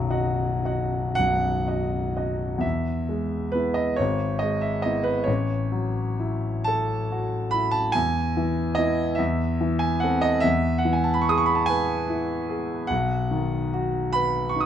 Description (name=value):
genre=classical, romantic nocturne for solo piano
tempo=36-50 BPM (dotted quarters)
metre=6/8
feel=rubato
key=E major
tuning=A4 = 440 Hz
part: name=warm concert grand piano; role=solo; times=0.0-14.7 s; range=B0 to D#6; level=-22 LUFS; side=equal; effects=none
room=light reverb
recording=close, detailed microphones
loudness=-22 LUFS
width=side -9 dB against mid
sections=0.0-2.6 A section; 2.6-14.7 B section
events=none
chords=0.0 B; 2.6 E; 4.0 E/G#; 5.3 A6; 8.0 E; 9.2 Am/E; 10.4 E; 12.9 B